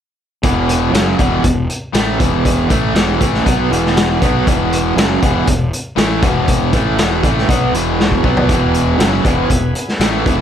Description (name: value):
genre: classic rock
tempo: 119 BPM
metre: 4/4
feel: straight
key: E major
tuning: A4 = 440 Hz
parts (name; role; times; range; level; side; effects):
- distorted electric guitar; riff; 0.4-10.4 s; E2 to B3; -19 LUFS; left 12 dB; overdrive
- raw garage guitar; riff; 0.4-10.4 s; E2 to B3; -18 LUFS; right 10 dB; overdrive, tremolo
- fuzz fingered electric bass; bass; 0.4-10.4 s; E1 to B1; -20 LUFS; equal; overdrive
- raw garage drum kit; drums; 0.4-10.4 s; hi-hat, kick drum, snare drum, toms; -16 LUFS; equal; none
- bright tonewheel organ; sustained chords; 8.5-10.4 s; B3 to B4; -26 LUFS; left 1 dB; none
room: light reverb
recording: none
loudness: -12 LUFS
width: side -9 dB against mid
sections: 0.4-10.4 A section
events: drum fill 8.0-8.5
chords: 0.4 E